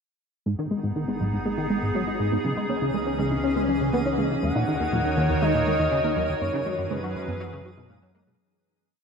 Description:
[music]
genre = ambient, sequencer-driven space music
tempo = 121 BPM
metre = 4/4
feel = straight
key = G# minor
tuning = A4 = 440 Hz
[part]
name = evolving wavetable pad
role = sustained chords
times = 0.7-8.4 s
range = D#3 to C#5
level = -28 LUFS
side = left 1 dB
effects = chorus, built-in reverb
[part]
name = soft round pluck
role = arpeggios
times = 0.5-8.4 s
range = F#3 to D#4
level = -32 LUFS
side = moving between left 1 dB and right 9 dB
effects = chorus, auto-pan, tape echo
[part]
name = plucky analog bass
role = riff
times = 0.5-8.4 s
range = D#2 to C#4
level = -27 LUFS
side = equal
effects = ensemble chorus, tape echo
[part]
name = analog drone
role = bass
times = 1.2-8.4 s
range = G#1 to F#2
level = -35 LUFS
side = equal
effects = chorus
[part]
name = twinkling granular texture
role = texture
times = 1.6-8.4 s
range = D#4 to D#5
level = -38 LUFS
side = left 2 dB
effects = built-in reverb
[part]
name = expressive synth lead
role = melody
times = 4.4-8.1 s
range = B4 to F#5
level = -28 LUFS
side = equal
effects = analog chorus, tape echo
[sound]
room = moderate plate reverb, RT60 3.2 s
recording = none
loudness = -23 LUFS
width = side -6 dB against mid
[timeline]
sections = 0.5-8.4 A section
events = fade-in on synth drone 0.5-8.4; fade-in on synth texture 0.5-8.4; filter sweep on analog synth bass 0.5-8.4; fade-out 5.8-8.4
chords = 0.5 G#m; 2.4 C#m; 4.4 D#m7; 6.4 F#7sus4

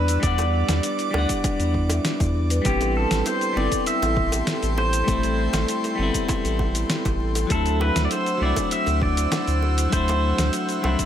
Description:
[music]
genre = sunset chillout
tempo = 99 BPM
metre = 4/4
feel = straight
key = unclear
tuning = A4 = 440 Hz
[part]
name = pedal steel guitar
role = melody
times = 0.0-11.1 s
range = G4 to E5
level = -27 LUFS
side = right 1 dB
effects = ping-pong delay
[part]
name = clean electric guitar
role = accompaniment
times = 0.0-11.1 s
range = F#3 to F#5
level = -28 LUFS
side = moving between left 5 dB and right 3 dB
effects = auto-pan, ping-pong delay
[part]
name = airy breathy pad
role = sustained chords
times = 0.0-11.1 s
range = A4 to E6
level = -30 LUFS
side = right 1 dB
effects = chorus
[part]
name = buzzing kalimba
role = arpeggios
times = 0.0-11.1 s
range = D4 to E5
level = -30 LUFS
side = left 2 dB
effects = ping-pong delay
[part]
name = warm sub bass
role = bass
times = 0.0-11.0 s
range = G1 to E2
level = -23 LUFS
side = equal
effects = none
[part]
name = dusty soul sampler-style drum kit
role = drums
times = 0.1-11.1 s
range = hi-hat, shaker, snare drum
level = -27 LUFS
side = left 1 dB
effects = overdrive
[part]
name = electronic kick drum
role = drums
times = 0.2-11.1 s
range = none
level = -26 LUFS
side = equal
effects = overdrive
[part]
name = bongos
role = percussion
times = 0.4-11.0 s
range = none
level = -33 LUFS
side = right 2 dB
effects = none
[sound]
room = light reverb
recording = none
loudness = -20 LUFS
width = side -10 dB against mid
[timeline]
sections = 0.0-11.1 A section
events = none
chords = 0.0 Em7; 2.7 Am9; 7.5 D9

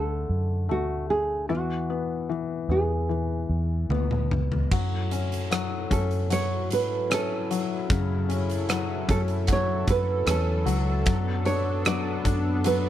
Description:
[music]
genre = pop ballad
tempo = 75 BPM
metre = 4/4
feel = straight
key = unclear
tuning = A4 = 440 Hz
[part]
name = nylon-string guitar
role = melody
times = 0.0-12.9 s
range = F#4 to D5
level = -28 LUFS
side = right 4 dB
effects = slapback echo
[part]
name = felt-muted upright piano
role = accompaniment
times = 0.0-12.9 s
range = C#3 to D4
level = -30 LUFS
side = left 9 dB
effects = none
[part]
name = vintage muted fingered electric bass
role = bass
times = 0.0-12.9 s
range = C#2 to G#2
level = -28 LUFS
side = equal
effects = none
[part]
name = huge arena drum kit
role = drums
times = 3.9-12.8 s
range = crash cymbal, hi-hat, kick drum, rim click, toms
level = -29 LUFS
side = equal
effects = none
[part]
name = chorused pulse-width pad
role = sustained chords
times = 4.7-12.9 s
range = F#3 to A4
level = -33 LUFS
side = right 1 dB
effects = none
[sound]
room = little or no reverb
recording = none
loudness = -23 LUFS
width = side -12 dB against mid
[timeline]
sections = 0.0-4.7 A section; 4.7-12.9 B section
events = drum fill 3.9-4.7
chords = 0.0 D; 1.5 E; 4.7 F#m7; 11.1 Bm7/F#

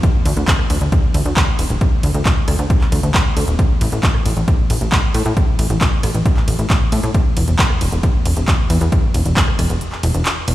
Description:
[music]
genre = uplifting trance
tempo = 135 BPM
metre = 4/4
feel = straight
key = unclear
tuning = A4 = 442 Hz
[part]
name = big-room dance drum kit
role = drums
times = 0.0-10.5 s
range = handclaps, hi-hat, ride cymbal, rim click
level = -22 LUFS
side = right 1 dB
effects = none
[part]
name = electronic kick drum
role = drums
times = 0.0-9.5 s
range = none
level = -16 LUFS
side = equal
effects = none
[part]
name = plucky analog bass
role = bass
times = 0.3-10.5 s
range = D1 to A2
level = -16 LUFS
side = equal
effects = sidechain pumping
[sound]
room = little or no reverb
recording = played on a big sound system in a bare room, large studio reverb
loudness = -14 LUFS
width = side -15 dB against mid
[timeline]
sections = 0.0-10.5 A section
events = break 9.8-10.5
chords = none

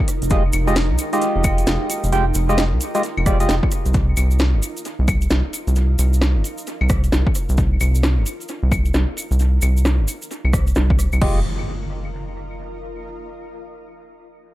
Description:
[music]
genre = UK garage, two-step garage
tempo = 132 BPM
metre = 4/4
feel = swing 62% on 16ths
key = F minor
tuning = A4 = 436 Hz
[part]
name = granular cloud pad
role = texture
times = 0.0-13.0 s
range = Eb4 to Bb4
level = -32 LUFS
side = right 2 dB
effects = built-in reverb, sidechain pumping
[part]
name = house drum kit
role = drums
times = 0.1-11.3 s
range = claves, crash cymbal, hi-hat, rim click, snare drum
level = -25 LUFS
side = equal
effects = overdrive, low-pass filter on hats, low-pass filter on perc, low-pass filter on snare, low-pass filter on cymbals, low-pass filter on room, dub echo
[part]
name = tube shaker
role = percussion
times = 0.1-11.2 s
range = none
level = -31 LUFS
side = right 2 dB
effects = none
[part]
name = rubbery square bass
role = bass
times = 0.2-11.4 s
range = F1 to C2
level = -17 LUFS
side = equal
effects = tube saturation
[part]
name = percussive organ stab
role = stabs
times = 0.3-3.5, 11.2-11.4 s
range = Ab3 to G5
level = -22 LUFS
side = right 1 dB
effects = chorus, analog delay
[part]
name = electronic kick drum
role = drums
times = 0.3-11.3 s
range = none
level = -20 LUFS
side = equal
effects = overdrive
[part]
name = impact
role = sound effects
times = 11.4-13.0 s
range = none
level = -29 LUFS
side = equal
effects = none
[sound]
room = little or no reverb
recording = echo-heavy mix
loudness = -16 LUFS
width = side -16 dB against mid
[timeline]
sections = 0.0-11.2 A section; 11.2-13.0 B section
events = fade-out on ambient pad 0.0-11.2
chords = 0.0 Fm9; 3.9 Cm7; 11.2 Fm9

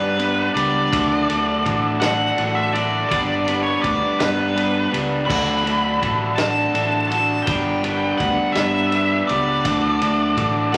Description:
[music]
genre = indie rock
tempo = 55 BPM (dotted quarters)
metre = 6/8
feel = straight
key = D major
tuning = A4 = 440 Hz
[part]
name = nasal lead guitar with a parked wah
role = melody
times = 0.0-10.8 s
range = B4 to B5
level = -24 LUFS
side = equal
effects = overdrive
[part]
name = crunchy overdriven guitar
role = riff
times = 0.0-10.8 s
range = D3 to B4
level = -26 LUFS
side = equal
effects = spring reverb
[part]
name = electric guitar through a small old amp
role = riff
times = 0.0-10.8 s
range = G2 to D4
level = -29 LUFS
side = equal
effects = none
[part]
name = picked electric bass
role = bass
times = 0.0-10.8 s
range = G1 to G2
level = -28 LUFS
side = equal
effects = none
[part]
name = vintage drum kit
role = drums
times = 0.2-10.8 s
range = crash cymbal, kick drum, ride cymbal, snare drum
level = -30 LUFS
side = equal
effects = none
[sound]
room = wet large studio reverb, RT60 1.3 s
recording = vinyl crackle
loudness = -20 LUFS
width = mono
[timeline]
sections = 0.0-10.8 A section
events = none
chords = 0.0 G; 0.9 D; 3.1 G; 5.3 D; 7.5 G; 9.7 D

